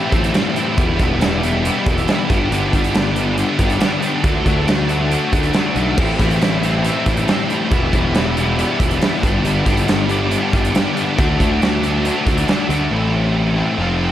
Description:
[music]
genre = indie rock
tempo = 138 BPM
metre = 4/4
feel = straight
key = G major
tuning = A4 = 440 Hz
[part]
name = overdriven tonewheel organ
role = sustained chords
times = 0.0-12.9 s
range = F#4 to B5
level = -29 LUFS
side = equal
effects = none
[part]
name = crunchy overdriven guitar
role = riff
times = 0.0-14.1 s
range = E2 to G4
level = -22 LUFS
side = left 6 dB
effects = none
[part]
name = scooped high-gain guitar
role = riff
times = 0.0-14.1 s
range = G2 to F4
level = -21 LUFS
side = right 5 dB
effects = distortion, ensemble chorus, tape echo
[part]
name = fuzz picked electric bass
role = bass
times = 0.1-14.1 s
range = E1 to D2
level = -20 LUFS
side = equal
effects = overdrive
[part]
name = big rock drum kit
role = drums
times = 0.1-12.8 s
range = crash cymbal, hi-hat, kick drum, snare drum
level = -19 LUFS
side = equal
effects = none
[sound]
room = light reverb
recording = none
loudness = -14 LUFS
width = side -12 dB against mid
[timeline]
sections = 0.0-12.9 A section; 12.9-14.1 B section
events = none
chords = 0.0 Am7; 0.8 Em7; 2.3 Gmaj7; 4.2 Dadd9; 6.0 Am7; 7.7 Em7; 9.2 Gmaj7; 11.2 Dadd9; 12.9 Am

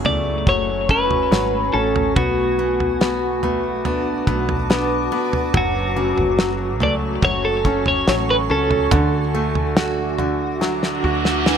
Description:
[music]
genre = pop ballad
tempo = 71 BPM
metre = 4/4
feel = straight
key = unclear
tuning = A4 = 439 Hz
[part]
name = twelve-string electric guitar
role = melody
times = 0.0-10.2 s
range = F#4 to D5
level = -21 LUFS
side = equal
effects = ping-pong delay
[part]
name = bright grand piano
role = accompaniment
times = 0.0-11.6 s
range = C#3 to F#4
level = -24 LUFS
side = left 4 dB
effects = none
[part]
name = granular cloud pad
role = sustained chords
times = 0.0-11.6 s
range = A3 to D6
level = -26 LUFS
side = equal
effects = built-in reverb
[part]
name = picked steel-string acoustic guitar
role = arpeggios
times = 0.0-11.6 s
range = F#2 to G#4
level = -26 LUFS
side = right 9 dB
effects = ping-pong delay
[part]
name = woody fretless electric bass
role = bass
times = 0.0-11.6 s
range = F#1 to D2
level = -26 LUFS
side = equal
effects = wide subtle chorus
[part]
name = damped 70s drum kit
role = drums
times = 0.0-11.6 s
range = kick drum, snare drum, toms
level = -21 LUFS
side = right 1 dB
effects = none
[part]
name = reverse cymbal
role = sound effects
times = 10.9-11.6 s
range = none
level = -24 LUFS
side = right 5 dB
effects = none
[sound]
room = light reverb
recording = none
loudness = -17 LUFS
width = side -8 dB against mid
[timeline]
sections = 0.0-11.6 A section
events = drum fill 10.6-11.6; reverse cymbal 10.9-11.6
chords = 0.0 F#madd9; 2.2 Bm7; 5.5 F#madd9; 8.9 Dadd9

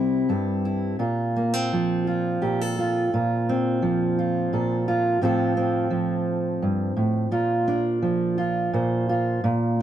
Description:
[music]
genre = folk, solo fingerstyle acoustic guitar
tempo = 57 BPM (dotted quarters)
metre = 6/8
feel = straight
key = Bb lydian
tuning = A4 = 438 Hz
[part]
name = fingerpicked steel-string acoustic guitar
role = solo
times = 0.0-9.8 s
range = G2 to C5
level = -21 LUFS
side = right 1 dB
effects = none
[sound]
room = light reverb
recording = dry, close 1970s-style studio recording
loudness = -21 LUFS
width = side -10 dB against mid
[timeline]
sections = 0.0-9.4 A section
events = none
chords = 0.0 C; 1.0 Bbsus2; 5.2 F/A; 7.3 Bb

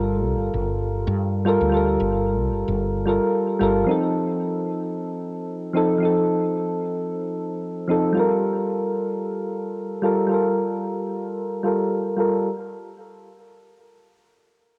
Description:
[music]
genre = sunset chillout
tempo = 112 BPM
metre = 4/4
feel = swing 54% on 16ths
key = G minor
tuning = A4 = 440 Hz
[part]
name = soft electric-piano-like synth keys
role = accompaniment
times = 0.0-12.5 s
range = F3 to Bb4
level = -24 LUFS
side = equal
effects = chorus, low-pass filter, cassette tape, tape echo
[part]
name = woody fretless electric bass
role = bass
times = 0.0-3.8 s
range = G1 to G2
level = -27 LUFS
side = equal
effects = analog chorus
[sound]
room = moderate spring reverb, RT60 1.7 s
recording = home recording on cassette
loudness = -23 LUFS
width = mono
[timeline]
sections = 0.0-12.4 A section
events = filter sweep on synth keys 0.0-12.4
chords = 0.0 Gm9; 3.9 F7; 8.2 Gm9

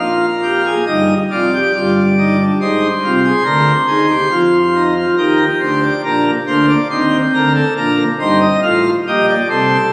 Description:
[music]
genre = classical, baroque-style 3-part fugue for pipe organ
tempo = 70 BPM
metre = 3/4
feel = straight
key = Eb major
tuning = A4 = 440 Hz
[part]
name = pipe organ, plenum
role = solo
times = 0.0-9.9 s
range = F1 to F5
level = -14 LUFS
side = equal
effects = none
[sound]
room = wet church reverb, RT60 3.5 s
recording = recorded on a phone in the room, studio reverb, compression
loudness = -14 LUFS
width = mono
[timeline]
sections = 0.9-9.9 A section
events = none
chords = 0.0 Bb5; 0.9 Eb; 2.6 Fm7/Ab; 3.5 Bb7/D; 5.2 Eb; 6.0 Bb; 7.8 Cm7/Bb; 8.6 F7/A

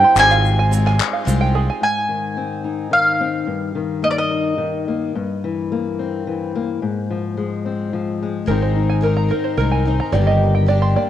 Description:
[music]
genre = indie folk with a building arrangement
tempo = 108 BPM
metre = 3/4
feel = straight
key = unclear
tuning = A4 = 439 Hz
[part]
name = mandolin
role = melody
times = 0.0-4.8 s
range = D5 to Ab5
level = -17 LUFS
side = right 1 dB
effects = cassette tape
[part]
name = picked twelve-string acoustic guitar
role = accompaniment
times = 0.0-1.8, 8.5-11.1 s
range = G2 to Bb4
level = -25 LUFS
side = left 6 dB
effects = cassette tape
[part]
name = warm upright piano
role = accompaniment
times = 0.0-1.8 s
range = G1 to C5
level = -30 LUFS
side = right 8 dB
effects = cassette tape
[part]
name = open-back banjo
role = arpeggios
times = 0.0-1.8, 8.5-11.1 s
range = Ab4 to C6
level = -23 LUFS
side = right 7 dB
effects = cassette tape
[part]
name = fingered electric bass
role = bass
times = 0.0-1.7, 8.5-11.0 s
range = G1 to C2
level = -17 LUFS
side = equal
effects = none
[part]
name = egg shaker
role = percussion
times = 0.2-1.4 s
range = none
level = -34 LUFS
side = right 9 dB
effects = none
[part]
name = group handclap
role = percussion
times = 0.2-1.1 s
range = none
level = -24 LUFS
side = left 10 dB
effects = none
[part]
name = fingerpicked steel-string acoustic guitar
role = accompaniment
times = 1.8-11.1 s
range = G2 to Bb4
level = -22 LUFS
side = left 6 dB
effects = cassette tape
[sound]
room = light reverb, small room ambience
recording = home recording on cassette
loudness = -17 LUFS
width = side -11 dB against mid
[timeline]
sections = 0.0-1.8 A section; 1.8-8.5 B section; 8.5-11.1 C section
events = build-up 8.5-11.1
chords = 0.2 Fmadd9/Ab; 1.8 Ab; 3.5 Eb/G; 5.1 C7/G; 6.8 Fm/Ab; 8.5 Abadd9; 10.1 Ebmaj7/G

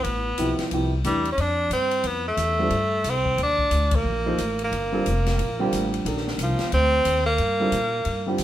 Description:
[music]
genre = modal jazz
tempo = 180 BPM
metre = 4/4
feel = swing 62% on 8ths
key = unclear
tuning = A4 = 435 Hz
[part]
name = edgy tenor saxophone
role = melody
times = 0.0-8.3 s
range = F3 to D4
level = -23 LUFS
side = right 1 dB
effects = none
[part]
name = upright bass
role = bass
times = 0.0-8.4 s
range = F1 to Bb2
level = -26 LUFS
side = equal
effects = none
[part]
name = open jazz drum kit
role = drums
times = 0.0-8.4 s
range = hi-hat, kick drum, ride cymbal, snare drum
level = -32 LUFS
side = left 2 dB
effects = none
[part]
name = warm baby grand piano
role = accompaniment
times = 0.4-8.4 s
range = C3 to C5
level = -26 LUFS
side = right 1 dB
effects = none
[sound]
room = moderate studio reverb, RT60 0.6 s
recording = band playing live in one room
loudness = -21 LUFS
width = side -12 dB against mid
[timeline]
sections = 0.0-8.4 A section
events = band accent 3.9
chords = 0.0 Fmaj9; 3.4 Ebmaj9

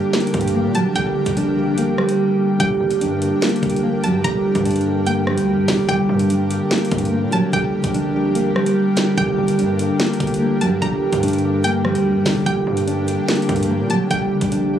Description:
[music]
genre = hip hop, drill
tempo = 146 BPM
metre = 4/4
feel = half-time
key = G minor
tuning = A4 = 439 Hz
[part]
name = nylon-string guitar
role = melody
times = 0.0-14.8 s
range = F#3 to D4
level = -20 LUFS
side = right 1 dB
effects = none
[part]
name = string-like resonator pluck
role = second line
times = 0.0-14.8 s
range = G5 to Bb5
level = -25 LUFS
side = left 1 dB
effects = chorus, ping-pong delay
[part]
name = mellow tine electric piano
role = accompaniment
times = 0.0-14.8 s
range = D3 to G4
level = -21 LUFS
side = left 1 dB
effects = slow stereo tremolo
[part]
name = airy breathy pad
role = sustained chords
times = 0.0-14.8 s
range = D4 to G5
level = -26 LUFS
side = right 1 dB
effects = chorus
[part]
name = drill drum kit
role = drums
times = 0.1-14.6 s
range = hi-hat, kick drum, rim click, snare drum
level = -24 LUFS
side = right 1 dB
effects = none
[part]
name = distorted 808-style bass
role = bass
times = 0.3-14.8 s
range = F#1 to Bb2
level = -26 LUFS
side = equal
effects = distortion
[sound]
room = light reverb, digital ambience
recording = recorded on a phone in the room, club reverb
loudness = -16 LUFS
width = side -9 dB against mid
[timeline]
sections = 0.0-2.6 A section; 2.6-14.8 A section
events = drums muted 2.2-2.6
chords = 0.0 Gm

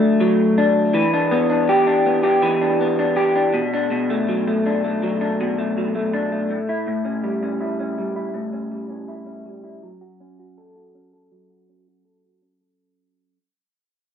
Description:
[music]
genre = indie pop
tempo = 81 BPM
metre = 4/4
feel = straight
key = unclear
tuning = A4 = 440 Hz
[part]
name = electric guitar through a small old amp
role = solo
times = 0.0-13.4 s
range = A2 to A4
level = -18 LUFS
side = left 1 dB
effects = analog chorus, warbly pitch drift, low-pass filter
[sound]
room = wet studio reverb, RT60 0.6 s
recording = dark, warm production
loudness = -18 LUFS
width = side -8 dB against mid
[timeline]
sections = 0.9-12.8 A section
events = fade-out 0.9-12.8; filter sweep on clean electric guitar 0.9-12.8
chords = 0.0 D; 0.9 Em7; 3.5 Bm7; 6.5 A7; 9.8 F#m

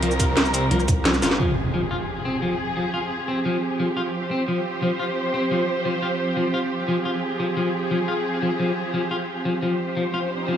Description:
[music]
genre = dark technical drum and bass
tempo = 175 BPM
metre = 4/4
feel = straight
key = F minor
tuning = A4 = 443 Hz
[part]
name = muted studio string section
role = sustained chords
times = 0.0-10.6 s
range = F3 to C5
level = -25 LUFS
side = right 2 dB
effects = sidechain pumping
[part]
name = electric guitar at the edge of break-up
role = arpeggios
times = 0.0-10.6 s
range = F3 to F4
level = -25 LUFS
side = left 2 dB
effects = sidechain pumping, tape echo
[part]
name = wide detuned saw bass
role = bass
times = 0.0-1.4 s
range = G1 to C2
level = -24 LUFS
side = right 1 dB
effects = chorus, sidechain pumping
[part]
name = drum and bass drum kit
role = drums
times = 0.0-1.4 s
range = cabasa, hi-hat, rim click, snare drum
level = -22 LUFS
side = equal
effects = low-pass filter on hats, low-pass filter on perc, low-pass filter on snare, low-pass filter on room
[part]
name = electronic kick drum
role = drums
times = 0.2-0.9 s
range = none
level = -21 LUFS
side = equal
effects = none
[part]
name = pulsing pluck wobble bass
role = bass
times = 0.7-1.2 s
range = C2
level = -23 LUFS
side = right 1 dB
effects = chorus
[part]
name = impact and riser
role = sound effects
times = 1.4-2.8, 9.9-10.6 s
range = none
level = -29 LUFS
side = right 1 dB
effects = none
[sound]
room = moderate lush hall reverb, RT60 2.0 s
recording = small room ambience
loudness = -21 LUFS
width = side -9 dB against mid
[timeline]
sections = 0.0-1.4 A section; 1.4-10.6 B section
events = drop 0.0-1.4; drum fill 1.1; impact 1.4-2.8; riser 9.9-10.6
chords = 0.0 F5; 1.4 Fm

